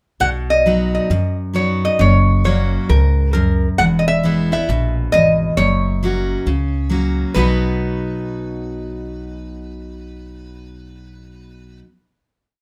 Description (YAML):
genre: honky-tonk and classic country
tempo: 134 BPM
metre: 4/4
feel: swing 65% on 8ths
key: B major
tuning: A4 = 440 Hz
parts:
  - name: lap resonator guitar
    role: melody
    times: 0.2-11.8 s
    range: A#4 to F#5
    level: -21 LUFS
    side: equal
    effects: none
  - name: picked steel-string acoustic guitar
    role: accompaniment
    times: 0.2-11.9 s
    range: E2 to F#4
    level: -22 LUFS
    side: equal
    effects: none
  - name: upright bass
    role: bass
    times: 0.2-11.8 s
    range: E1 to F#2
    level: -22 LUFS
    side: equal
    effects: none
room: light reverb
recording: none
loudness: -17 LUFS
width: mono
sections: 0.2-7.4 verse; 7.4-10.9 final chord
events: none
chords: 0.2 B; 2.0 F#; 3.8 E; 5.6 F#; 7.4 B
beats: | 0.21 0.66 1.11 1.55 | 2.00 2.45 2.89 3.34 | 3.79 4.24 4.68 5.13 | 5.58 6.02 6.47 6.92 | 7.36 7.81 8.26 8.70 | 9.15 9.59 10.04 10.48